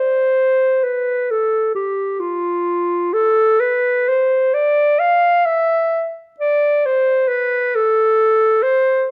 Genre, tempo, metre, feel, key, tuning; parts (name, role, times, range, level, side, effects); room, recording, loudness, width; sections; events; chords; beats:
classical, free, expressive piece for unaccompanied clarinet; 62-69 BPM; 3/4; rubato; A4 = 439 Hz
warm clarinet; solo; 0.0-9.1 s; F4 to F5; -17 LUFS; equal
moderate large studio reverb, RT60 1.3 s; -17 LUFS; mono
0.0-9.1 A section
0.82 | 1.73 2.65 3.59 | 4.54 5.47 6.40 | 7.30 8.20